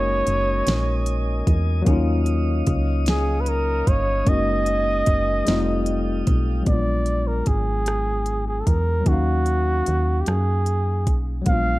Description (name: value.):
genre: slow six-eight R&B.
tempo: 50 BPM (dotted quarters).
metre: 6/8.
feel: straight.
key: Eb harmonic minor from 6.7 s.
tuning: A4 = 440 Hz.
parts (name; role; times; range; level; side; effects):
breathy flugelhorn; melody; 0.0-11.8 s; Gb4 to F5; -24 LUFS; right 1 dB; slapback echo.
tine electric piano; accompaniment; 0.0-11.8 s; Gb3 to F5; -26 LUFS; left 4 dB; none.
mellow tonewheel organ; sustained chords; 0.0-6.7 s; A4 to Eb6; -33 LUFS; equal; slow rotary speaker.
solid FM bass; bass; 0.0-11.8 s; F1 to Gb2; -23 LUFS; equal; none.
smooth R&B drum kit; drums; 0.3-11.7 s; hi-hat, kick drum, rim click, snare drum; -21 LUFS; equal; none.
room: digital ambience.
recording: none.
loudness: -19 LUFS.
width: side -18 dB against mid.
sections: 0.0-6.7 A section; 6.7-11.8 B section.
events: none.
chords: 0.0 Gb69; 1.9 Ebm9; 4.3 Gb69; 5.5 F9; 6.7 Bb7b9b13; 9.1 Ebm9.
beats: 0.66 | 1.86 3.06 | 4.26 5.46 | 6.66 7.86 | 9.06 10.26 | 11.46.